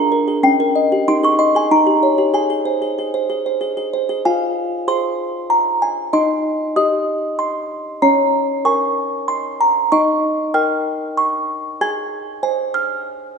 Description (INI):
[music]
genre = classical, lullaby for music box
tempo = 95 BPM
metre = 3/4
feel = straight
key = Ab major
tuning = A4 = 440 Hz
[part]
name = music box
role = solo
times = 0.0-13.4 s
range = Db4 to Ab6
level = -15 LUFS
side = equal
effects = none
[sound]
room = wet scoring stage reverb, RT60 1.9 s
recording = recorded in a church or concert hall, nothing above 10.3 kHz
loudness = -15 LUFS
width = side -5 dB against mid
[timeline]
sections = 0.0-4.2 A section; 4.2-13.4 B section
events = none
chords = 0.4 Eb7/Db; 1.1 Ab5/Eb; 1.7 Eb7; 2.3 Ab; 4.2 Fm; 6.1 Cm/Eb; 8.0 Bbm7/Db; 9.9 Eb7; 11.8 Ab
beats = | 0.43 1.07 1.70 | 2.33 2.97 3.61 | 4.24 4.88 5.51 | 6.14 6.77 7.40 | 8.03 8.66 9.29 | 9.91 10.54 11.17 | 11.80 12.44 13.07